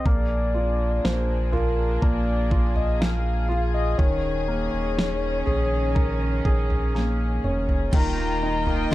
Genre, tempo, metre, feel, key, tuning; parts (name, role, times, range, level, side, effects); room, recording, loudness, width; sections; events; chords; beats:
pop ballad; 61 BPM; 4/4; straight; A4 = 438 Hz
mellow horn-like synth lead; melody; 0.0-8.9 s; Bb4 to C6; -29 LUFS; left 3 dB; chorus
warm concert grand piano; accompaniment; 0.0-8.9 s; Eb3 to Bb4; -29 LUFS; right 1 dB
warm studio string section; sustained chords; 0.1-8.9 s; Eb3 to G5; -32 LUFS; equal
warm sub bass; bass; 0.1-8.9 s; Eb1 to Bb1; -25 LUFS; equal
smooth R&B drum kit; drums; 0.1-8.9 s; crash cymbal, kick drum, snare drum, toms; -24 LUFS; equal
picked steel-string acoustic guitar; arpeggios; 7.9-8.9 s; Eb3 to F4; -30 LUFS; left 5 dB
little or no reverb; dark, warm production; -21 LUFS; side -16 dB against mid
0.0-7.9 A section; 7.9-8.9 B section
drum fill 6.9-7.9
0.1 Bb7; 4.0 Eb7sus4; 7.9 Ebadd9
| 0.06 1.04 2.02 3.01 | 3.99 4.97 5.96 6.94 | 7.93 8.91